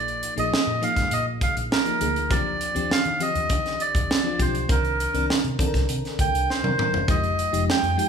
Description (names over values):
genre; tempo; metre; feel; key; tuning
polished 1980s jazz-funk pop; 101 BPM; 4/4; straight; Eb major; A4 = 442 Hz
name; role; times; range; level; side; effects
melodica; melody; 0.0-8.1 s; Bb4 to G5; -25 LUFS; right 2 dB; none
bell-like FM electric piano; accompaniment; 0.0-8.1 s; D3 to Bb4; -29 LUFS; left 3 dB; chorus
vintage muted fingered electric bass; bass; 0.0-7.9 s; Fb1 to Eb3; -29 LUFS; equal; none
tight funk drum kit; drums; 0.1-8.1 s; hi-hat, kick drum, snare drum, toms; -25 LUFS; right 1 dB; none
room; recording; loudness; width
moderate large studio reverb, RT60 1.1 s; band playing live in one room; -21 LUFS; side -7 dB against mid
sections
0.0-8.1 A section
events
drum fill 6.5-7.1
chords
0.0 Bb7sus4; 2.3 Ebmaj13; 4.7 Cm9; 7.1 Fm9